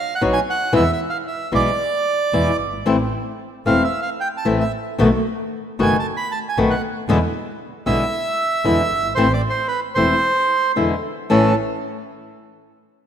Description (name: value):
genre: tango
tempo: 113 BPM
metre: 4/4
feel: rubato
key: A minor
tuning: A4 = 440 Hz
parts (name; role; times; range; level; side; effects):
- bandoneon; melody; 0.0-11.6 s; A4 to B5; -21 LUFS; right 4 dB; none
- flamenco guitar; accompaniment; 0.2-11.5 s; A2 to F#4; -20 LUFS; left 3 dB; none
- clear double bass; bass; 0.2-11.5 s; E1 to E2; -25 LUFS; right 1 dB; none
room: wet lush hall reverb, RT60 2.1 s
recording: rough home demo mix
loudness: -17 LUFS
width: side -8 dB against mid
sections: 0.0-11.3 A section; 11.3-13.1 B section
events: none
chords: 0.0 B; 0.7 E; 2.9 Am; 5.0 B7; 7.1 E7; 9.2 Am; 10.8 E7; 11.3 A